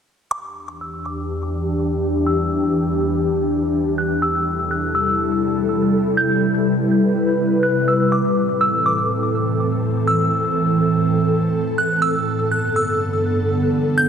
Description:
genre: hip hop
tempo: 123 BPM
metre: 4/4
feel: half-time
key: unclear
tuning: A4 = 440 Hz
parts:
  - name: delicate synth tine bell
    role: melody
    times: 0.3-14.1 s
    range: D6 to G6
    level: -23 LUFS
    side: equal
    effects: chorus, phaser, low-pass filter, ping-pong delay
  - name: ethereal airy pad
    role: sustained chords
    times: 0.9-14.1 s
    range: E2 to B4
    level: -18 LUFS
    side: equal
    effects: ensemble chorus, built-in reverb, low-pass filter
room: wet lush hall reverb, RT60 2.2 s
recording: dark, warm production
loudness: -17 LUFS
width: side -7 dB against mid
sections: 0.3-14.1 A section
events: filter sweep 0.3-14.1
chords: 0.3 Em7; 4.2 C6; 8.1 Am; 12.0 Gadd9

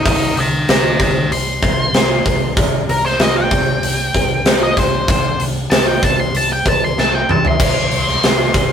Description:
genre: blues rock power trio and southern rock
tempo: 95 BPM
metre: 4/4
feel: straight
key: unclear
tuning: A4 = 440 Hz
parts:
  - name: octave-fuzz lead guitar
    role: melody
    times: 0.0-8.7 s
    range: Bb4 to C6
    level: -18 LUFS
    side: left 1 dB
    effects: distortion
  - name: vintage muted picked electric bass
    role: bass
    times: 0.1-8.7 s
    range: C2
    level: -23 LUFS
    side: equal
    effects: none
  - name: big rock drum kit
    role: drums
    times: 0.1-8.7 s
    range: crash cymbal, hi-hat, kick drum, snare drum, toms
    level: -15 LUFS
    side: equal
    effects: none
room: light reverb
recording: rough rehearsal-room recording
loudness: -13 LUFS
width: side -8 dB against mid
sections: 0.0-8.7 A section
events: lead electric guitar solo 0.0-8.7; drum fill 7.0-7.6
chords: 0.0 C5

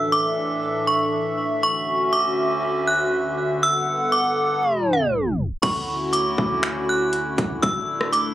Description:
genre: hip hop, atmospheric cloud-rap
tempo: 120 BPM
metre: 4/4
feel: half-time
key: D major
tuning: A4 = 440 Hz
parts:
  - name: metallic FM bell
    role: melody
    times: 0.0-8.3 s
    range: B5 to F#6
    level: -22 LUFS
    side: right 1 dB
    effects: chorus, tape echo
  - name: hollow soft pad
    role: sustained chords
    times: 0.0-8.3 s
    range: D2 to F#5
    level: -23 LUFS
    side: equal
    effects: chorus, sidechain pumping
  - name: soft 808-style bass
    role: bass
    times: 5.6-8.3 s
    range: A1 to D2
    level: -36 LUFS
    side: left 1 dB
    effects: none
  - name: trap drum kit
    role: drums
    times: 5.6-8.2 s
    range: crash cymbal, finger snaps, hi-hat, kick drum, rim click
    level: -24 LUFS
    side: equal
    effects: none
room: light reverb, digital ambience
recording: recorded on a phone in the room, club reverb, tape stop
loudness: -19 LUFS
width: side -13 dB against mid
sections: 0.0-5.6 A section; 5.6-8.3 B section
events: tape stop 4.6-5.6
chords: 0.0 Asus4; 1.6 Dmaj7; 3.6 Gmaj7; 5.6 Dmaj7; 7.6 Asus4

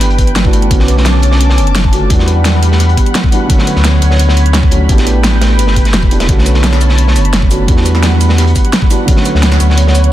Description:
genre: liquid drum and bass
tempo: 172 BPM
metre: 4/4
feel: straight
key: B minor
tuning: A4 = 440 Hz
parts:
  - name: felt-muted upright piano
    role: accompaniment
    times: 0.0-10.1 s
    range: D3 to G4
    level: -17 LUFS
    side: right 2 dB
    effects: ping-pong delay
  - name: lush unison pad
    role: sustained chords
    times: 0.0-10.1 s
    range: G3 to D6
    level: -19 LUFS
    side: equal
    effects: chorus, phaser, vintage 12-bit sampler grit, sidechain pumping
  - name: kalimba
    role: arpeggios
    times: 0.0-10.0 s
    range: A3 to B4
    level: -21 LUFS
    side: right 1 dB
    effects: ping-pong delay
  - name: warm sub bass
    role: bass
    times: 0.0-10.1 s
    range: E1 to E2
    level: -10 LUFS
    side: equal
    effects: none
  - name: crunchy breakbeat drum kit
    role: drums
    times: 0.0-10.0 s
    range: hi-hat, snare drum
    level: -20 LUFS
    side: equal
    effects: high-pass filter on hats, high-pass filter on snare, high-pass filter on room
  - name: pop drum kit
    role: drums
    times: 0.0-10.1 s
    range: hi-hat, shaker, snare drum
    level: -17 LUFS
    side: equal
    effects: overdrive
  - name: electronic kick drum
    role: drums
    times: 0.2-9.2 s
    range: none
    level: -11 LUFS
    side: equal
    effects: overdrive
room: small room ambience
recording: dense, heavily limited modern master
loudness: -8 LUFS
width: side -13 dB against mid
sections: 0.0-10.1 A section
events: none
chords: 0.0 A9sus4; 0.7 Bm9; 2.1 Em9; 3.5 Dmaj7; 4.9 A9sus4; 6.3 Bm9; 7.7 Em9; 9.1 Dmaj7

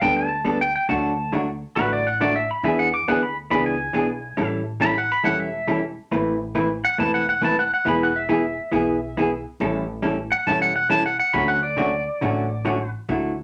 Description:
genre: country, western swing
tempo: 138 BPM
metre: 4/4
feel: swing 67% on 8ths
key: D major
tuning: A4 = 439 Hz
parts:
  - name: pedal steel guitar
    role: second line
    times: 0.0-12.9 s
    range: B4 to D6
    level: -24 LUFS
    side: equal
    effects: none
  - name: hollow-body jazz guitar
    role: accompaniment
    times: 0.0-13.3 s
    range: D3 to B4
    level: -25 LUFS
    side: equal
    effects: none
  - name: upright bass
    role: bass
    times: 0.0-13.4 s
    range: E1 to E2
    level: -35 LUFS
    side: equal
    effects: none
room: wet studio ambience, RT60 0.5 s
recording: none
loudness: -22 LUFS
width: mono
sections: 0.0-13.1 A section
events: pedal steel guitar solo 0.0-13.1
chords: 0.0 Gadd9; 0.9 D; 2.6 E7; 4.4 A7; 6.1 Amadd9; 7.9 E; 9.6 A7; 11.3 Dmaj7

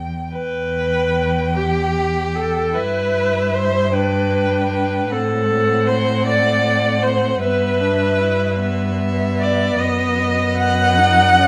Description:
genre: classical, slow romantic movement for string quartet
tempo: 50 BPM (dotted quarters)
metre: 6/8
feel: rubato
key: E minor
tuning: A4 = 440 Hz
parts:
  - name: warm violin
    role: melody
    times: 0.0-11.5 s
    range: D#5 to G5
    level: -29 LUFS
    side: equal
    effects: none
  - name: rich cello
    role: bass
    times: 0.0-11.5 s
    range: E2 to A2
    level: -24 LUFS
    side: equal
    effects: none
  - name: clear viola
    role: accompaniment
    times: 0.3-11.5 s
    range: G4 to F#5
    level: -20 LUFS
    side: equal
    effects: none
  - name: rich violin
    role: second line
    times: 1.6-11.5 s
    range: B3 to G4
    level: -27 LUFS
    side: equal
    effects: none
room: moderate large studio reverb, RT60 1.3 s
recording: none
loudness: -18 LUFS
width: mono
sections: 0.3-11.5 A section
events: none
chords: 0.3 Em; 2.7 Em/G; 5.1 Am; 7.4 Em/G; 9.8 B/F#

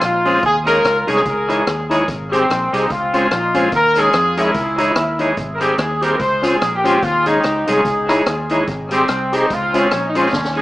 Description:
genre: ska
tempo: 146 BPM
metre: 4/4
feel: swing 57% on 8ths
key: unclear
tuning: A4 = 440 Hz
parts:
  - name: clear horn section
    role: melody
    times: 0.0-10.6 s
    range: C4 to C5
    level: -17 LUFS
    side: equal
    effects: dub echo
  - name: vintage muted fingered electric bass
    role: bass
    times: 0.0-10.6 s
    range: Ab1 to F2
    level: -26 LUFS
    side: equal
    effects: none
  - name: street-band drum kit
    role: drums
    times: 0.0-10.6 s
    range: hi-hat, kick drum, rim click, snare drum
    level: -25 LUFS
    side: equal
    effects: dub echo
  - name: clean electric guitar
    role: accompaniment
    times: 0.3-10.6 s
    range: Fb3 to Ab4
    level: -22 LUFS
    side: right 1 dB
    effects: none
  - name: bright tonewheel organ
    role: stabs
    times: 0.3-10.6 s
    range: Db4 to Db5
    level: -20 LUFS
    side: left 1 dB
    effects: overdrive, chorus vibrato, slow rotary speaker
room: wet studio reverb, RT60 0.7 s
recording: small speaker sound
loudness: -14 LUFS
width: side -17 dB against mid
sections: 0.0-10.6 A section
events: drum fill 10.3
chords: 0.4 Eb7sus4; 1.3 Dbmadd9; 2.1 Abmaj7; 2.9 Dbmaj7; 3.7 Eb7sus4; 4.6 Dbmadd9; 5.4 Abmaj7; 6.2 Dbmaj7; 7.0 Eb7sus4; 7.8 Dbmadd9; 8.7 Abmaj7; 9.5 Dbmaj7

